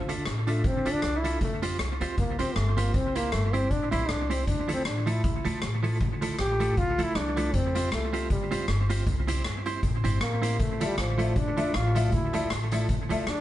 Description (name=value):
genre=ska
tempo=157 BPM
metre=4/4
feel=swing 56% on 8ths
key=D minor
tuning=A4 = 442 Hz
part: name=clear trombone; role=melody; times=0.0-13.4 s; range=F3 to G4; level=-30 LUFS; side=left 1 dB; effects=none
part: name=upright bass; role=bass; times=0.0-13.4 s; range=G1 to F2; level=-29 LUFS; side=equal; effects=none
part: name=clean electric guitar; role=accompaniment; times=0.1-13.2 s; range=F3 to E5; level=-32 LUFS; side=right 3 dB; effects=tremolo, analog delay
part: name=street-band drum kit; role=drums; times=0.1-13.4 s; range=hi-hat, kick drum, rim click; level=-31 LUFS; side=equal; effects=none
part: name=bright upright piano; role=stabs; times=10.8-13.2 s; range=F4 to E5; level=-34 LUFS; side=left 4 dB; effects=none
room=moderate studio reverb, RT60 0.7 s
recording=band playing live in one room, nothing above 10.9 kHz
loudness=-24 LUFS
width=side -14 dB against mid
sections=0.0-13.4 A section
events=trombone solo 0.0-13.4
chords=0.0 Dmadd9; 1.4 Fsus2; 2.9 C; 4.5 Dmadd9; 7.5 Fsus2; 9.1 C; 10.6 Dmadd9